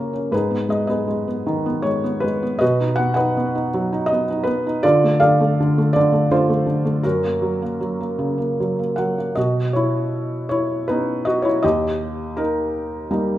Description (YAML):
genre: classical, lyrical solo piano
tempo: 80 BPM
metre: 3/4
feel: rubato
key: B major from 9.4 s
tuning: A4 = 441 Hz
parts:
  - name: felt-muted upright piano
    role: solo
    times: 0.0-13.4 s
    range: D#2 to F#5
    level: -18 LUFS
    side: equal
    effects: none
room: moderate recital hall reverb, RT60 1.7 s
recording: minimal, uncompressed stereo recording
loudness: -18 LUFS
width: side -14 dB against mid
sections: 0.0-9.4 A section; 9.4-13.4 B section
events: none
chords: 0.3 G#m; 2.6 B; 4.8 Dm; 7.0 F#; 9.4 Badd9; 11.6 D#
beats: | 0.33 1.10 1.86 | 2.62 3.36 4.10 | 4.83 5.57 6.31 | 7.05 7.80 8.58 | 9.36 10.13 10.89 | 11.64 12.37 13.11